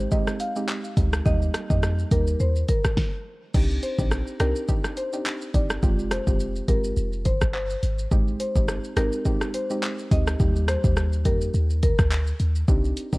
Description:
dancehall; 105 BPM; 4/4; swing 56% on 16ths; A4 = 440 Hz
soft round pluck; accompaniment; 0.0-13.2 s; G3 to G4; -30 LUFS; right 1 dB; chorus, sidechain pumping
clean 808-style bass; bass; 0.0-13.2 s; F1 to F2; -24 LUFS; equal
marimba with medium mallets; melody; 0.1-11.9 s; Bb4 to F5; -31 LUFS; left 1 dB; ping-pong delay
deep house drum kit; drums; 0.1-13.2 s; crash cymbal, handclaps, hi-hat, kick drum, rim click, shaker, snare drum; -24 LUFS; equal
digital ambience; worn, warbling old tape, cassette tape, warbly pitch drift; -21 LUFS; side -23 dB against mid
0.0-3.5 A section; 3.5-13.2 B section
stop 3.0-3.5
0.0 Abmaj7; 1.3 Eb; 3.5 Cmadd9; 5.8 Fmadd9; 8.1 Abmaj7; 10.4 Eb

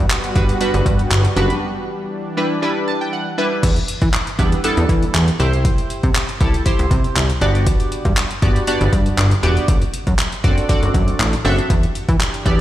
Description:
dance-pop; 119 BPM; 4/4; straight; E minor; A4 = 440 Hz
chorused retro synth keys; accompaniment; 0.0-12.6 s; G3 to A5; -21 LUFS; right 1 dB
lush unison pad; sustained chords; 0.0-3.6, 11.9-12.6 s; E3 to G4; -26 LUFS; equal; chorus, sidechain pumping
plucky analog bass; bass; 0.0-12.6 s; E1 to E3; -17 LUFS; equal; sidechain pumping
deep house drum kit; drums; 0.1-12.6 s; crash cymbal, handclaps, hi-hat, kick drum; -18 LUFS; equal; overdrive
light reverb; played on a big sound system in a bare room, large studio reverb; -15 LUFS; side -13 dB against mid
0.0-3.6 A section; 3.6-12.6 A section
break 1.6-3.6; synth keys fill 2.6-3.6
0.0 Gmaj7; 1.6 Em7; 5.4 C; 7.4 Gmaj7; 9.7 D7/F#; 11.7 Em7

